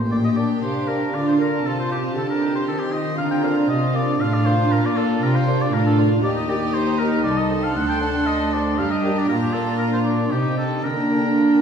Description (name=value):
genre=classical, baroque-style concerto movement with solo episodes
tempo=117 BPM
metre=3/4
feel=straight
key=Bb major, G minor from 6.2 s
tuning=A4 = 440 Hz
part: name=lute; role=accompaniment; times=0.0-11.6 s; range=D2 to A4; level=-25 LUFS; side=right 2 dB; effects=none
part: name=warm studio cello section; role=bass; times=0.0-11.6 s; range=C2 to Eb3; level=-23 LUFS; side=equal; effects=none
part: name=clear oboe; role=melody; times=0.1-11.6 s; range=G4 to G5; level=-26 LUFS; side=equal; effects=none
part: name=rich chamber violin section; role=melody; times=0.1-11.6 s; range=F5 to C6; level=-35 LUFS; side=left 2 dB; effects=none
part: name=rich chamber violin section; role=second line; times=0.1-11.6 s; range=D4 to A4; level=-26 LUFS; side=left 1 dB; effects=none
part: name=rich studio viola section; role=accompaniment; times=0.1-11.6 s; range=Bb3 to F4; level=-26 LUFS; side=right 2 dB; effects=none
room=wet recital hall reverb, RT60 1.6 s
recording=heard from further back in the room, small room ambience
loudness=-18 LUFS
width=side -7 dB against mid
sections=0.1-11.6 A section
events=none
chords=0.1 Bb; 1.6 F7/C; 3.2 Bb; 6.2 Eb; 7.3 Adim/C; 7.8 D5; 8.8 Gm; 9.3 Bb; 10.3 Cm; 10.8 Gm/D